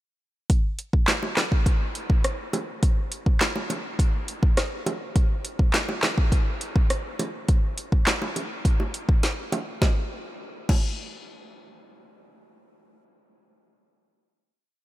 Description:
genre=dancehall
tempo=103 BPM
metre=4/4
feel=straight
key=none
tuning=none
part: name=afro-pop drum kit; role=drums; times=0.5-10.8 s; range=crash cymbal, handclaps, hi-hat, kick drum, rim click, snare drum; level=-22 LUFS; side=equal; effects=none
part: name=bongos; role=percussion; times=1.1-11.0 s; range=none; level=-34 LUFS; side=right 1 dB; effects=none
room=light reverb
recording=none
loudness=-22 LUFS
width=side -16 dB against mid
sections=0.5-9.8 chorus; 9.8-12.1 final hit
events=none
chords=none

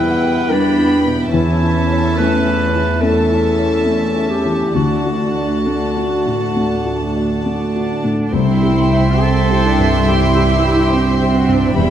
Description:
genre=cinematic, emotional film score for orchestra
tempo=69 BPM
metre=4/4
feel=uneven beats, rubato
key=unclear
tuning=A4 = 440 Hz
part: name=warm symphonic violin section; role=melody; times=0.0-11.9 s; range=G5 to C6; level=-26 LUFS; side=left 1 dB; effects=none
part: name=clear clarinet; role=second line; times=0.0-7.9 s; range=D4 to B4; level=-19 LUFS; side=equal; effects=none
part: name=warm symphonic violin section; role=second line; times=0.0-11.9 s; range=E5 to G5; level=-26 LUFS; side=left 1 dB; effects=none
part: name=dark symphonic viola section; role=accompaniment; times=0.0-11.9 s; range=G3 to E4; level=-22 LUFS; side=right 3 dB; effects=none
part: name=felt-muted upright piano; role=accompaniment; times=0.0-11.9 s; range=C2 to E5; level=-20 LUFS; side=left 1 dB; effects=none
part: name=concert harp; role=arpeggios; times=0.0-11.9 s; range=C3 to B5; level=-23 LUFS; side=left 5 dB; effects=none
part: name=warm symphonic cello section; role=bass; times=0.0-11.9 s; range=C2 to E2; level=-21 LUFS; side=right 2 dB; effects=none
part: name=warm cello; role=melody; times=7.4-11.9 s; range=D4 to A4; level=-22 LUFS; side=right 3 dB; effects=none
part: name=dark symphonic double bass section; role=bass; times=8.3-11.9 s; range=E1 to C2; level=-20 LUFS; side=right 3 dB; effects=none
room=wet recital hall reverb, RT60 1.6 s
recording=dark, warm production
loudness=-13 LUFS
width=side -10 dB against mid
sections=0.0-8.3 A section; 8.3-11.9 A section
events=none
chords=0.0 Em; 1.3 A/E; 4.7 D; 8.3 C

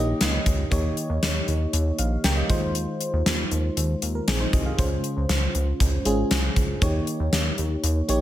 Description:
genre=1980s-style pop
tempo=118 BPM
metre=4/4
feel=straight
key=unclear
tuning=A4 = 442 Hz
part: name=FM electric piano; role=accompaniment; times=0.0-8.2 s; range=Db3 to G5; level=-27 LUFS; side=equal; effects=chorus
part: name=chorused synth bass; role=bass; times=0.0-8.2 s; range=Ab1 to Eb2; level=-25 LUFS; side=equal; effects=none
part: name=gated 80s drum kit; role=drums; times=0.2-8.2 s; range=hi-hat, kick drum, snare drum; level=-24 LUFS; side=equal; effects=gated reverb
room=light reverb, small room ambience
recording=none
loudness=-21 LUFS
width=side -13 dB against mid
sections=0.0-8.2 A section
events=none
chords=0.0 Eb7; 2.5 Ab6/Eb; 4.8 Dbmaj7; 6.8 Eb7

